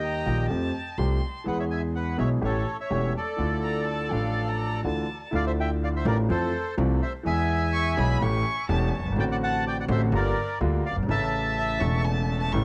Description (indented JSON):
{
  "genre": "tango",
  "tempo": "125 BPM",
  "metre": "4/4",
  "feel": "rubato",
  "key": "D minor",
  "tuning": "A4 = 440 Hz",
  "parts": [
    { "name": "bandoneon", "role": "melody", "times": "0.0-12.0 s", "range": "A4 to A5", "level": "-32 LUFS", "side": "equal", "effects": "cassette tape, analog delay" },
    { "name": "warm violin", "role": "second line", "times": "0.0-12.6 s", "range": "E5 to C#6", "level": "-36 LUFS", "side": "equal", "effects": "analog delay" },
    { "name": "warm concert grand piano", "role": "accompaniment", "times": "0.0-12.6 s", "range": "E1 to G#4", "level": "-30 LUFS", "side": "equal", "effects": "none" },
    { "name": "upright bass", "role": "bass", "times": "0.0-12.6 s", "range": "E1 to F2", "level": "-30 LUFS", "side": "equal", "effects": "none" }
  ],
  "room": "moderate small room reverb, RT60 0.6 s",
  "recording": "home recording on cassette",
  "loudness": "-26 LUFS",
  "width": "mono",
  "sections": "0.0-5.3 A section; 5.3-12.6 B section",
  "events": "none",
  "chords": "0.5 Fadd9; 1.5 E; 2.4 A7; 3.4 Dmadd9; 6.3 Fmaj7; 7.3 E; 8.2 A7; 9.2 D7/A; 10.1 Gm7; 11.1 A"
}